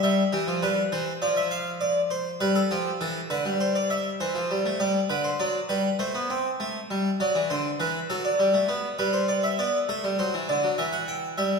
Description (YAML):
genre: classical, baroque-style two-part invention for harpsichord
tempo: 101 BPM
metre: 4/4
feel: straight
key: C major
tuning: A4 = 438 Hz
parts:
  - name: harpsichord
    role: solo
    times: 0.0-11.6 s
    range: D3 to G5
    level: -23 LUFS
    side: equal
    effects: none
room: wet recital hall reverb, RT60 1.6 s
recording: recorded in a church or concert hall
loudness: -23 LUFS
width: side -4 dB against mid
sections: 0.0-9.6 A section; 9.6-11.6 B section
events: none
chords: 0.0 C; 1.2 Dm7/F; 2.4 G7; 3.6 C/G; 4.8 G; 6.0 Am7; 7.2 D7; 8.4 G; 9.6 Bm7; 10.8 Em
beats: | 0.04 0.63 1.22 1.81 | 2.41 3.00 3.60 4.20 | 4.80 5.39 6.00 6.60 | 7.20 7.79 8.39 8.98 | 9.59 10.19 10.79 11.38